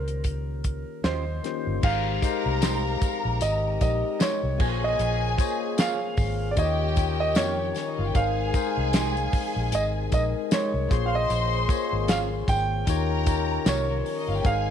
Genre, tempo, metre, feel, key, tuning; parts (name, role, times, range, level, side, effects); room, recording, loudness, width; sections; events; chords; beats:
lush 1970s-style soul; 76 BPM; 4/4; swing 58% on 16ths; Ab major; A4 = 440 Hz
warm grand piano; melody; 0.0-14.7 s; Bb4 to G5; -30 LUFS; right 3 dB
tine electric piano; accompaniment; 0.0-14.7 s; Eb3 to Eb5; -31 LUFS; left 14 dB; fast stereo tremolo
vintage muted fingered electric bass; bass; 0.0-14.7 s; G1 to F2; -28 LUFS; equal
damped 70s drum kit; drums; 0.1-14.7 s; crash cymbal, hi-hat, kick drum, snare drum; -26 LUFS; equal
semi-hollow electric guitar; riff; 1.0-13.9 s; Ab3 to Db5; -35 LUFS; right 12 dB
warm studio string section; second line; 1.8-14.7 s; Bb3 to C6; -32 LUFS; left 1 dB
mellow French horn section; sustained chords; 1.8-14.7 s; C3 to Bb4; -36 LUFS; left 3 dB
tambourine; percussion; 1.8-14.7 s; -42 LUFS; left 15 dB
light reverb, small room reverb; 1960s-style stereo with parts hard left and right; -23 LUFS; side -8 dB against mid
0.0-1.8 A section; 1.8-14.7 B section
tine electric piano fill 0.6-1.8
0.0 Eb13; 1.8 Abmaj7; 4.6 Bbm7; 6.6 Eb7; 8.2 Abmaj7; 10.9 Bbm7; 12.9 Eb7
0.24 1.04 | 1.83 2.62 3.42 4.21 | 5.00 5.79 6.58 7.36 | 8.15 8.94 9.73 10.51 | 11.30 12.09 12.87 13.66 | 14.45